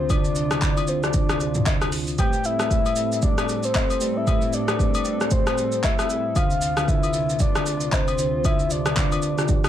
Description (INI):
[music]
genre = amapiano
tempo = 115 BPM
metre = 4/4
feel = swing 58% on 16ths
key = unclear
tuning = A4 = 440 Hz
[part]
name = soft octave-layered synth lead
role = melody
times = 0.0-9.7 s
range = C5 to G5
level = -26 LUFS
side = left 2 dB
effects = chorus, tape echo
[part]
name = mellow tine electric piano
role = accompaniment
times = 0.0-9.7 s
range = D3 to D5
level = -27 LUFS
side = right 1 dB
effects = medium stereo tremolo
[part]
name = hollow soft pad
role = sustained chords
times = 0.0-9.7 s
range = D2 to A4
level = -31 LUFS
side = right 1 dB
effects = chorus, sidechain pumping
[part]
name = deep house drum kit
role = drums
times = 0.1-9.7 s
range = handclaps, hi-hat, kick drum, rim click, shaker, toms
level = -22 LUFS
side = equal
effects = none
[part]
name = agogo bells and woodblock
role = percussion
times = 0.1-9.7 s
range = none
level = -33 LUFS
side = left 6 dB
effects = none
[sound]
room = light reverb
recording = none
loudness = -20 LUFS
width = side -11 dB against mid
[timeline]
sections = 0.0-9.7 A section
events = none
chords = 0.0 Dm7; 2.2 Am9; 6.4 Dm7